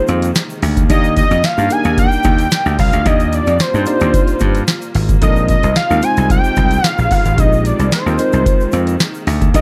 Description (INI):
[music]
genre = early-eighties boogie funk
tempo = 111 BPM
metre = 4/4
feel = straight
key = unclear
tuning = A4 = 440 Hz
[part]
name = fat analog lead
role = melody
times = 0.0-9.6 s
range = C5 to Ab5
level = -20 LUFS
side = equal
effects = none
[part]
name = tine electric piano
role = accompaniment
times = 0.0-9.6 s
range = G3 to F5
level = -23 LUFS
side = equal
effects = analog chorus
[part]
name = clear studio string section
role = sustained chords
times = 0.0-9.6 s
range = Bb2 to F4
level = -29 LUFS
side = equal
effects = none
[part]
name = slap bass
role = bass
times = 0.1-9.6 s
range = G1 to G2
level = -18 LUFS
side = equal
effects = none
[part]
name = booming analog drum machine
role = drums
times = 0.1-9.6 s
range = hi-hat, kick drum, snare drum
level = -18 LUFS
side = equal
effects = none
[part]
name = egg shaker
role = percussion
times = 0.1-9.6 s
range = none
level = -39 LUFS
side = equal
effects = none
[sound]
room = light reverb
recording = dark, warm production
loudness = -14 LUFS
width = mono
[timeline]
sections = 0.0-9.6 A section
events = none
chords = 0.0 Bb9sus4; 0.9 Ebmaj7; 5.2 Bb9sus4